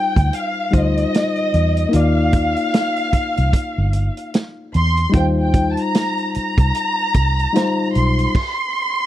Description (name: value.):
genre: lush 1970s-style soul.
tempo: 75 BPM.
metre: 4/4.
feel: swing 58% on 16ths.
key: unclear.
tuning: A4 = 440 Hz.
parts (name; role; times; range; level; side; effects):
dark studio violin section; melody; 0.0-9.1 s; Eb5 to C6; -21 LUFS; equal; slapback echo.
barky reed electric piano; accompaniment; 0.0-8.4 s; G3 to D5; -22 LUFS; left 3 dB; overdrive.
vintage muted fingered electric bass; bass; 0.2-8.3 s; G1 to E2; -18 LUFS; right 1 dB; none.
vintage drum kit; drums; 0.2-8.6 s; crash cymbal, hi-hat, kick drum, snare drum; -17 LUFS; right 1 dB; none.
room: small room ambience.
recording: dry, close 1970s-style studio recording.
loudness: -15 LUFS.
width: side -13 dB against mid.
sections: 0.0-9.1 A section.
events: stop 8.3-9.1.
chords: 0.0 Eb69; 1.9 Cm11 (rootless); 5.1 Eb69; 8.3 N.C..